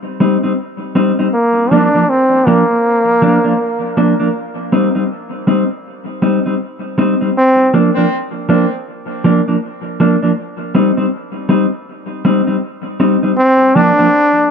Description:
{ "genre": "reggae", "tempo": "80 BPM", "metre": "4/4", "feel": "swing 61% on 16ths", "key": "unclear", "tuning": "A4 = 439 Hz", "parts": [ { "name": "mellow electric guitar", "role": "accompaniment", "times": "0.2-14.1 s", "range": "F3 to Eb4", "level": "-14 LUFS", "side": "equal", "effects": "dub echo" }, { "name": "bright trombone", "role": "melody", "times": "1.3-7.7, 13.4-14.5 s", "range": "Bb3 to D4", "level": "-12 LUFS", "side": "equal", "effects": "dub echo" } ], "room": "moderate spring reverb, RT60 1.5 s, small room ambience", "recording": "none", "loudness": "-11 LUFS", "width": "side -6 dB against mid", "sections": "0.0-7.4 A section; 7.4-14.5 B section", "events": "break 0.0-1.3", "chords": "0.0 Cm; 1.3 Bb; 4.3 Cm; 7.4 Bb; 10.4 Cm; 13.4 Bb" }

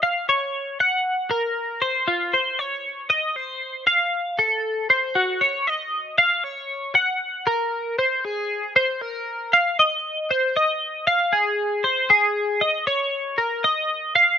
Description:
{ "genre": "rock", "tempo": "78 BPM (dotted quarters)", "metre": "6/8", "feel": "straight", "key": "unclear", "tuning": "A4 = 439 Hz", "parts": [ { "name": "twelve-string electric guitar", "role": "solo", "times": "0.0-14.4 s", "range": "F4 to Gb5", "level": "-19 LUFS", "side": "equal", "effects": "analog chorus" } ], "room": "little or no reverb", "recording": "rough home demo mix", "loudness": "-19 LUFS", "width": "side -8 dB against mid", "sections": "0.0-8.2 A section; 8.2-14.4 B section", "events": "none", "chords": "none" }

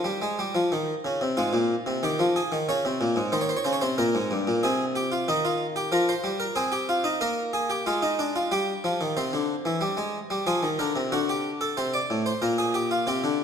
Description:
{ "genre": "classical, baroque-style two-part invention for harpsichord", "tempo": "92 BPM", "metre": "3/4", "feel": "straight", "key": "Ab major", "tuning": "A4 = 440 Hz", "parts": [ { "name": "harpsichord", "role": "solo", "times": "0.0-13.4 s", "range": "G2 to D5", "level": "-23 LUFS", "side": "equal", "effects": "none" } ], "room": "moderate scoring stage reverb, RT60 1.7 s", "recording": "none", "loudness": "-23 LUFS", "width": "side -7 dB against mid", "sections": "0.0-1.4 A section; 1.4-9.2 B section; 9.2-13.4 A section", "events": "none", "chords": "0.0 Ab; 2.7 Db5; 3.3 Eb7; 4.6 Ab/C; 5.3 Eb; 6.6 Ab/C; 7.2 Bb7; 8.5 Eb/G; 9.2 C; 10.5 Fm; 11.1 D7; 12.4 Gm/Bb" }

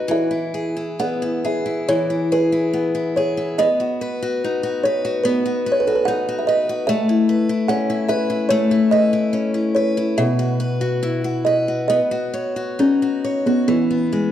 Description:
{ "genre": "celtic folk, Celtic slow air", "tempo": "66-74 BPM", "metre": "4/4", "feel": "rubato", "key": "E major", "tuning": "A4 = 440 Hz", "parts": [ { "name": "kalimba", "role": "melody", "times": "0.0-14.3 s", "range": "B3 to F#5", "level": "-20 LUFS", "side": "right 1 dB", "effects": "none" }, { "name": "picked steel-string acoustic guitar", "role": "accompaniment", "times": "0.0-14.3 s", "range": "B2 to C#5", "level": "-20 LUFS", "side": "left 2 dB", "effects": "none" } ], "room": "moderate recital hall reverb, RT60 1.5 s", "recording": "dark, warm production", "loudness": "-17 LUFS", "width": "side -11 dB against mid", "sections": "0.1-13.7 A section", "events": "none", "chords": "0.1 E; 6.9 Aadd9; 10.2 Bsus4; 11.9 Badd9; 13.7 E" }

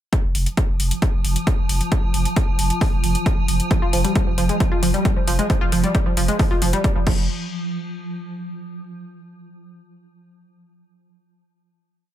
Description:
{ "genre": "driving peak-time techno", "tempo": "134 BPM", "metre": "4/4", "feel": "straight", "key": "unclear", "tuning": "A4 = 440 Hz", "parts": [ { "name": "swarming drone", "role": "drone", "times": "0.8-7.3 s", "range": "F3", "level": "-27 LUFS", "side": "right 2 dB", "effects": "built-in reverb, sidechain pumping" }, { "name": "electronic kick drum", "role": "drums", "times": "0.1-7.2 s", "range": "none", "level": "-19 LUFS", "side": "equal", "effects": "none" }, { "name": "techno drum kit", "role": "drums", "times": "0.1-7.2 s", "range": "crash cymbal, hi-hat", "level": "-28 LUFS", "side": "left 3 dB", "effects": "none" }, { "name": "saturated sub bass", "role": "bass", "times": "0.2-7.3 s", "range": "F1", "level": "-23 LUFS", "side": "equal", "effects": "overdrive, sidechain pumping, low-pass filter" }, { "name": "analog pluck", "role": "riff", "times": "3.7-7.3 s", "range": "F3 to F4", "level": "-23 LUFS", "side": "equal", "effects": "chorus, overdrive, vintage 12-bit sampler grit, sidechain pumping, ping-pong delay" } ], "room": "digital ambience", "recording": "none", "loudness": "-18 LUFS", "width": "side -12 dB against mid", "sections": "0.1-7.3 groove; 7.3-9.1 final hit", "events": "none", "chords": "none" }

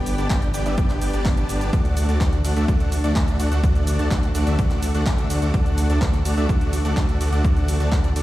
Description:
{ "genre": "EDM, festival progressive house", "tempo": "126 BPM", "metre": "4/4", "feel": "straight", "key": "D major", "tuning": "A4 = 441 Hz", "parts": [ { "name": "lush unison pad", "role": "sustained chords", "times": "0.0-8.2 s", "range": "D3 to A4", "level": "-31 LUFS", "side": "left 1 dB", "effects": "chorus, sidechain pumping" }, { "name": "big supersaw lead", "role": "riff", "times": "0.0-8.2 s", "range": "A3 to A5", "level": "-26 LUFS", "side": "equal", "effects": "sidechain pumping, digital delay" }, { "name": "detuned saw bass", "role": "bass", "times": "0.0-8.2 s", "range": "G1 to D2", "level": "-22 LUFS", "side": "equal", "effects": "sidechain pumping" }, { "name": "big-room dance drum kit", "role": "drums", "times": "0.1-8.2 s", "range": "handclaps, hi-hat, ride cymbal, shaker", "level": "-33 LUFS", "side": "equal", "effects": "none" }, { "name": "electronic kick drum", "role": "drums", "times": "0.3-8.0 s", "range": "none", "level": "-21 LUFS", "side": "equal", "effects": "overdrive" } ], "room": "little or no reverb", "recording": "played on a big sound system in a bare room, large studio reverb", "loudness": "-18 LUFS", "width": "side -16 dB against mid", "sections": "0.0-8.2 A section", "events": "none", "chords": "0.0 G; 1.7 D" }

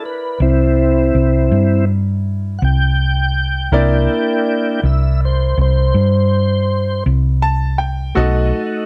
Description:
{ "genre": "blues", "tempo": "54 BPM (dotted quarters)", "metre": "12/8", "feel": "straight", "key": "unclear", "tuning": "A4 = 440 Hz", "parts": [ { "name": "bright grand piano", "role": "accompaniment", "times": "0.0-8.9 s", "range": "E4 to A5", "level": "-26 LUFS", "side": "equal", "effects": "none" }, { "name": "tonewheel organ", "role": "sustained chords", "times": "0.0-8.9 s", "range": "A3 to G5", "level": "-20 LUFS", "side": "equal", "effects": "chorus vibrato, slow rotary speaker" }, { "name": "hollow-body short-scale fingered electric bass", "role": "bass", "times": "0.4-8.5 s", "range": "B1 to G2", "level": "-17 LUFS", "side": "equal", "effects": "none" } ], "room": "light reverb", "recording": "dark, warm production", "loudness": "-16 LUFS", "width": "mono", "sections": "0.0-8.9 A section", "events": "tonewheel organ solo 0.0-8.9; grand piano fill 7.1-8.2", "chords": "0.0 C7; 8.2 B7" }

